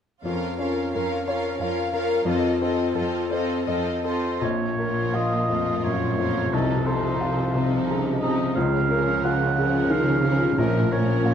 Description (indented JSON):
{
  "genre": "classical",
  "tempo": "88 BPM",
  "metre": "3/4",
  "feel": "rubato",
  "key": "Bb minor",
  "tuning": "A4 = 440 Hz",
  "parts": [
    { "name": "warm studio violin section", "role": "second line", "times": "0.2-11.3 s", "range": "Db4 to F5", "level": "-30 LUFS", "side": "left 2 dB", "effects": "none" },
    { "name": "rich studio viola section", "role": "accompaniment", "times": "0.2-11.3 s", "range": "F3 to F4", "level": "-31 LUFS", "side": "right 2 dB", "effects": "none" },
    { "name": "warm studio cello section", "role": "bass", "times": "0.2-11.3 s", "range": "F2 to Db3", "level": "-28 LUFS", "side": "right 3 dB", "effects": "none" },
    { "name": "clear grand piano", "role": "melody", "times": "0.3-11.3 s", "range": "Bb1 to F5", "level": "-24 LUFS", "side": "left 3 dB", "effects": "none" },
    { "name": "warm oboe", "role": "second line", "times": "4.1-11.3 s", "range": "A4 to Gb5", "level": "-28 LUFS", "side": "right 3 dB", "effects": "none" },
    { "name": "warm studio violin section", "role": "melody", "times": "4.8-11.3 s", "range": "A4 to Bb4", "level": "-36 LUFS", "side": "left 2 dB", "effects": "none" }
  ],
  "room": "moderate scoring stage reverb, RT60 2.1 s",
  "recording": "none",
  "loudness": "-21 LUFS",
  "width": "side -8 dB against mid",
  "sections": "0.2-4.4 A section; 4.4-11.3 B section",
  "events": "none",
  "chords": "0.2 Bbm/F; 2.3 F7; 4.4 Bbm; 6.5 F7/C; 8.6 Bbm/Db; 10.6 Bbm"
}